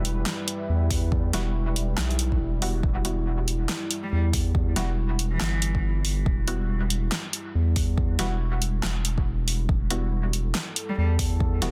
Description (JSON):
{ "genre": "deep dubstep", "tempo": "140 BPM", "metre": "4/4", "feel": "swing 60% on 16ths, half-time", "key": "E minor", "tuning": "A4 = 440 Hz", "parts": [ { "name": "deep dark ambient pad", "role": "sustained chords", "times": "0.0-11.7 s", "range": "G3 to B4", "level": "-36 LUFS", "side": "equal", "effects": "chorus, built-in reverb" }, { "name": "filtered dub chord stab", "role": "stabs", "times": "0.0-11.7 s", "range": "G3 to F#4", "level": "-38 LUFS", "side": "equal", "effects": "chorus, dub echo" }, { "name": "saturated sub bass", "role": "bass", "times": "0.0-11.7 s", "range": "E1 to E2", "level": "-27 LUFS", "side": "equal", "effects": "none" }, { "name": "deep house drum kit", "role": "drums", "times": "0.0-11.7 s", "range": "handclaps, hi-hat, snare drum", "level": "-32 LUFS", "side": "equal", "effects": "soft clipping on snare" }, { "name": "electronic kick drum", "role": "drums", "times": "0.9-11.5 s", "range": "none", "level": "-28 LUFS", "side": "equal", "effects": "none" }, { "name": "rich cello", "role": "melody", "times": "4.0-5.9, 10.9-11.1 s", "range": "E3 to G3", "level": "-38 LUFS", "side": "equal", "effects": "dub echo" } ], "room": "little or no reverb", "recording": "dense, heavily limited modern master", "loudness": "-26 LUFS", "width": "mono", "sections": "0.0-11.7 A section", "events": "none", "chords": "0.0 Emadd9", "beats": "0.26 0.69 | 1.12 1.55 1.98 2.40 | 2.83 3.26 3.69 4.12 | 4.55 4.98 5.41 5.83 | 6.26 6.69 7.12 7.55 | 7.98 8.40 8.83 9.26 | 9.69 10.12 10.55 10.98 | 11.40" }